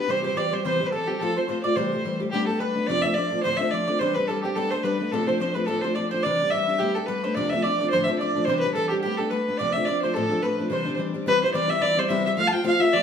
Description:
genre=celtic folk, Celtic reel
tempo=215 BPM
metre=4/4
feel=swing 55% on 8ths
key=C major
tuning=A4 = 440 Hz
part: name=rich fiddle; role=melody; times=0.0-13.0 s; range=G4 to A5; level=-24 LUFS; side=equal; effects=none
part: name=mandolin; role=second line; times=0.0-13.0 s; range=G4 to F5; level=-30 LUFS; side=right 4 dB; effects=none
part: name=picked steel-string acoustic guitar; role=accompaniment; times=0.0-13.0 s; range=D2 to G4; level=-26 LUFS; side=left 2 dB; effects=none
room=wet studio reverb, RT60 0.7 s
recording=heard from further back in the room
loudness=-22 LUFS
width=side -7 dB against mid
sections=0.0-2.3 A section; 2.3-11.3 B section; 11.3-13.0 C section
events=none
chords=0.1 C; 1.2 F; 1.8 C6; 2.3 Gadd9; 2.9 F6; 3.4 Dm7; 4.0 Cadd9; 4.6 Gadd9; 5.1 F6; 5.7 Dm7; 6.2 Cadd9; 6.8 Gadd9; 7.4 F6; 7.9 Dm7; 8.5 Cadd9; 9.0 Gadd9; 9.6 F6; 10.2 Dm7; 10.7 Cadd9; 11.3 C; 12.4 F

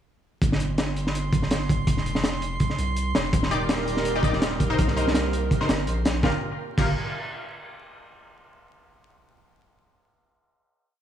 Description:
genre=drum and bass, jungle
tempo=165 BPM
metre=4/4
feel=swing 54% on 16ths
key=G minor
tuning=A4 = 440 Hz
part: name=saturated sub bass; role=bass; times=0.4-6.9 s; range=Eb1 to C2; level=-28 LUFS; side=equal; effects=none
part: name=crunchy breakbeat drum kit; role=drums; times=0.4-6.9 s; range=crash cymbal, hi-hat, kick drum, snare drum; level=-24 LUFS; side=equal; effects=none
part: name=drifting glass-harmonics texture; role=texture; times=0.7-6.2 s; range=C6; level=-36 LUFS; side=right 2 dB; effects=chorus, built-in reverb
part: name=airy breathy pad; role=sustained chords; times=3.3-6.4 s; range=Bb3 to D5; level=-30 LUFS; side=right 3 dB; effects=chorus
part: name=orchestra-hit-like synth stab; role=stabs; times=3.5-6.9 s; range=Eb4 to D5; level=-29 LUFS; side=left 3 dB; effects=built-in reverb, cassette tape, dub echo
room=light reverb, studio reverb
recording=vinyl crackle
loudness=-22 LUFS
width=side -10 dB against mid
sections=0.4-6.2 drop; 6.2-7.7 final chord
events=drop 0.4-6.2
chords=0.4 Gsus4; 1.9 F5; 3.3 Ebmaj7; 4.8 Cm7; 6.2 Gm7

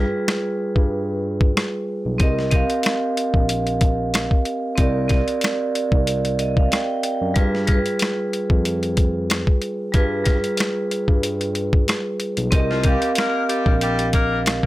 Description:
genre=hip hop, boom-bap hip-hop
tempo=93 BPM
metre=4/4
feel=swing 54% on 16ths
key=unclear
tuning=A4 = 440 Hz
part: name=vibraphone with hard mallets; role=accompaniment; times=0.0-14.7 s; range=G3 to G5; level=-22 LUFS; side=right 1 dB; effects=cassette tape, high-pass filter, low-pass filter
part: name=barky tine electric piano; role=bass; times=0.0-14.6 s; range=Bb1 to G2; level=-25 LUFS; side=equal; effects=medium stereo tremolo
part: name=boom bap sampler-style drum kit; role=drums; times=0.3-14.7 s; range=hi-hat, kick drum, rim click, snare drum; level=-19 LUFS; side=equal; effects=none
part: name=edgy saxophone section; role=stabs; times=12.7-14.4 s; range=F3 to Bb4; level=-24 LUFS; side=left 3 dB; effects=high-pass filter, low-pass filter, tape echo
room=little or no reverb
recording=none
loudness=-18 LUFS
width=side -17 dB against mid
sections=0.0-12.5 A section; 12.5-14.7 B section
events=break 0.0-2.2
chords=0.0 G7b9; 2.2 Cm7; 7.4 G7b9; 12.5 Cm7

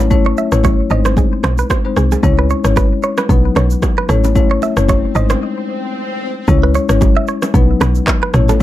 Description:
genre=afrobeats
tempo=113 BPM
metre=4/4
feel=swing 55% on 16ths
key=C# minor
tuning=A4 = 437 Hz
part: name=woody log drum bass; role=bass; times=0.0-8.6 s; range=F#1 to C#2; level=-14 LUFS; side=equal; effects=none
part: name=bongos and congas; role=percussion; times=0.0-8.6 s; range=none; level=-24 LUFS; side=right 6 dB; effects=none
part: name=marimba with medium mallets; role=accompaniment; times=0.1-8.6 s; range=F#3 to C#5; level=-18 LUFS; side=left 6 dB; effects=none
part: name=afro-pop drum kit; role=drums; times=0.1-8.6 s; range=handclaps, kick drum, rim click, shaker, toms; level=-16 LUFS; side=equal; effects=none
part: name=direct-recorded clean electric guitar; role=riff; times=0.3-8.6 s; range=G#4 to E5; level=-21 LUFS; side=right 6 dB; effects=ping-pong delay
part: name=swell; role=sound effects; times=5.0-6.5 s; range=none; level=-25 LUFS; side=left 2 dB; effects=none
room=light reverb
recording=dark, warm production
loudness=-12 LUFS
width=side -14 dB against mid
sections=0.0-6.5 A section; 6.5-8.6 B section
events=swell 5.0-6.5; break 5.4-6.5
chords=0.0 A; 0.9 G#; 2.2 C#m; 3.3 B; 4.1 A; 5.2 G#; 6.5 C#m; 7.5 B

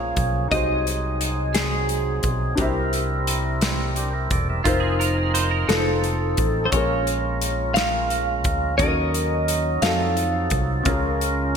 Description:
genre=slow gospel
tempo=58 BPM (dotted quarters)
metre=6/8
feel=straight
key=Bb minor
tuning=A4 = 439 Hz
part: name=clean electric guitar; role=melody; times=0.0-2.3, 5.7-10.6 s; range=Ab4 to F5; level=-24 LUFS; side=equal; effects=wide subtle chorus
part: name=warm grand piano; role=accompaniment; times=0.0-11.6 s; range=Bb2 to C5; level=-28 LUFS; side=left 3 dB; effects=analog chorus
part: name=percussive tonewheel organ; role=sustained chords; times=0.0-11.6 s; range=F3 to E5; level=-27 LUFS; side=right 3 dB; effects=slow rotary speaker, overdrive
part: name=fingered electric bass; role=bass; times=0.0-11.6 s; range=E1 to F2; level=-25 LUFS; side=equal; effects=none
part: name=modern studio drum kit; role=drums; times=0.2-11.4 s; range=hi-hat, kick drum, snare drum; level=-26 LUFS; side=equal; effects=none
part: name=clean electric guitar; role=second line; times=4.6-5.8 s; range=F4 to C5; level=-27 LUFS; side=right 7 dB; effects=analog chorus, digital delay
room=moderate lush hall reverb, RT60 2.0 s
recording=bright 1980s-style digital production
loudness=-20 LUFS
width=side -7 dB against mid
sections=0.0-11.6 A section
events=none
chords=0.0 Bbm7; 0.5 Ab7/C; 2.6 C7; 4.7 F7sus4; 5.7 F7; 6.7 Bbm7; 8.8 Ebm7; 9.8 F7b9; 10.9 Bbm7/Db

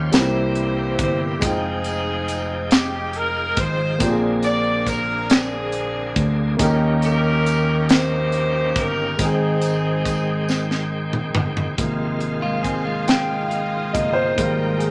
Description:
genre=slow gospel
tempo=46 BPM (dotted quarters)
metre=6/8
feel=straight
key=Ab major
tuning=A4 = 439 Hz
part: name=edgy saxophone section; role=melody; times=0.0-10.9 s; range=C4 to D5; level=-27 LUFS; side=equal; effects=none
part: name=warm concert grand piano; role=accompaniment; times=0.0-14.9 s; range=Ab2 to G5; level=-27 LUFS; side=equal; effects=none
part: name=bright tonewheel organ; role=sustained chords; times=0.0-14.9 s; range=D3 to G5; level=-31 LUFS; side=equal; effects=slow rotary speaker, overdrive
part: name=fingered electric bass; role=bass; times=0.0-14.9 s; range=F1 to Eb2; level=-27 LUFS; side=equal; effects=none
part: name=crisp fusion drum kit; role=drums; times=0.1-14.9 s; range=hi-hat, kick drum, snare drum, toms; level=-23 LUFS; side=equal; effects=none
part: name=tambourine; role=percussion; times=0.1-10.9 s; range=none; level=-41 LUFS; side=equal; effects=none
part: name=rich studio string section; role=sustained chords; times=11.8-14.9 s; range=F4 to G5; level=-35 LUFS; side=equal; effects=none
part: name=clean electric guitar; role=second line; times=12.4-14.1 s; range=Ab3 to Ab4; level=-29 LUFS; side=equal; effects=spring reverb
room=moderate studio reverb, RT60 0.8 s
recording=none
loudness=-21 LUFS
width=mono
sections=0.0-11.8 A section; 11.8-14.9 B section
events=drum fill 10.5-11.8; grand piano solo 11.8-14.9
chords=0.1 C7; 1.4 Fm9; 4.0 Bb9; 6.6 Eb7; 9.2 Abmaj7; 11.8 Ab6; 14.4 Fm11/Ab

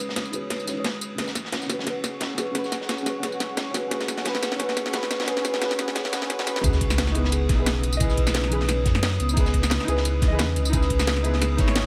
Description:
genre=liquid drum and bass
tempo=176 BPM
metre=4/4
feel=swing 54% on 16ths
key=unclear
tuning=A4 = 440 Hz
part: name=deep mellow chord stab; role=accompaniment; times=0.0-11.9 s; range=E3 to D#5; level=-32 LUFS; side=equal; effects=chorus, cassette tape, delay
part: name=glassy FM pad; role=sustained chords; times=0.0-11.9 s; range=G#4 to D#6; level=-37 LUFS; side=equal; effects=ensemble chorus, built-in reverb, phaser, sidechain pumping
part: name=felt-muted upright piano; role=arpeggios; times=0.0-11.9 s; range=C#3 to C#5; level=-36 LUFS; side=equal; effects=tape echo
part: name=sub bass with octave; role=bass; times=0.0-11.9 s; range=G#1 to G#2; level=-28 LUFS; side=equal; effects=high-pass filter
part: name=crunchy breakbeat drum kit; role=drums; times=0.1-11.8 s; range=ride cymbal, snare drum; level=-35 LUFS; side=equal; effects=high-pass filter on cymbals, high-pass filter on snare, high-pass filter on room
part: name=drum and bass drum kit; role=drums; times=0.2-11.8 s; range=hi-hat, snare drum, tambourine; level=-30 LUFS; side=equal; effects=none
part: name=electronic kick drum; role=drums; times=6.6-11.7 s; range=none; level=-25 LUFS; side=equal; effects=none
part: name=sub drop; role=sound effects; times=6.6-8.0 s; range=none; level=-33 LUFS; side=equal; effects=none
room=light reverb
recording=high-pass filter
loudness=-24 LUFS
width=mono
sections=0.0-6.6 A section; 6.6-11.9 B section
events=build-up 0.0-6.6; drum fill 0.0-6.6; filter sweep on synth stab 0.0-6.6; drop 6.6-11.9; impact 6.6-8.0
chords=0.0 C#m9; 1.2 E69; 6.6 C#m9

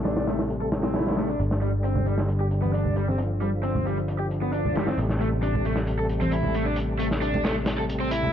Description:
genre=breakbeat, breaks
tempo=134 BPM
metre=4/4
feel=straight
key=unclear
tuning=A4 = 441 Hz
part: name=tonewheel organ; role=sustained chords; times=0.0-8.3 s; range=C3 to A3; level=-30 LUFS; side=left 1 dB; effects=chorus vibrato, fast rotary speaker, vintage 12-bit sampler grit
part: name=picked electric bass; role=bass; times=0.0-8.3 s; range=G1 to A1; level=-28 LUFS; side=equal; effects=tube saturation
part: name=overdriven electric guitar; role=riff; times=0.1-8.3 s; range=G3 to A4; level=-29 LUFS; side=equal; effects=vintage 12-bit sampler grit, dub echo
part: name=crunchy breakbeat drum kit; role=drums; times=0.1-8.2 s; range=hi-hat, snare drum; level=-30 LUFS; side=equal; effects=low-pass filter on hats, low-pass filter on snare, low-pass filter on room
part: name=congas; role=percussion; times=2.0-8.3 s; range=none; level=-30 LUFS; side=right 3 dB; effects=none
room=light reverb, studio reverb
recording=low-pass filter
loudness=-23 LUFS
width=side -9 dB against mid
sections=0.0-8.3 A section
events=filter sweep on overdriven electric guitar 0.0-8.3; filter sweep 0.0-8.3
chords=0.0 Am7; 1.4 Gsus4; 5.0 Am7

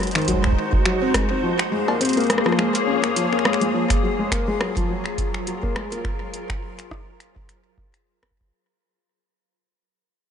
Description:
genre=IDM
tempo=104 BPM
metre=4/4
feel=swing 56% on 16ths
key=Gb lydian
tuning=A4 = 440 Hz
part: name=glassy FM pad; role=sustained chords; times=0.0-8.4 s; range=Gb3 to Db5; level=-24 LUFS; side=left 2 dB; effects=ensemble chorus, built-in reverb, sidechain pumping
part: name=felt-muted upright piano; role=arpeggios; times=0.0-6.0 s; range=Eb3 to Db4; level=-24 LUFS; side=left 2 dB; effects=vintage 12-bit sampler grit, digital delay
part: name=booming analog drum machine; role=drums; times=0.0-8.3 s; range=cowbell, finger snaps, hi-hat, rim click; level=-26 LUFS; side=equal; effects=overdrive, digital delay
part: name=electronic kick drum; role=drums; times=0.3-8.5 s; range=none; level=-24 LUFS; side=right 1 dB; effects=overdrive
room=light reverb, digital ambience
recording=nothing above 10.9 kHz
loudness=-19 LUFS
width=side -8 dB against mid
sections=0.0-3.7 A section; 3.7-8.4 B section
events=kick drops out 1.4-3.7; fade-out 3.7-8.4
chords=0.0 Ab7; 1.4 Bbm9; 3.7 Gbmaj9#11

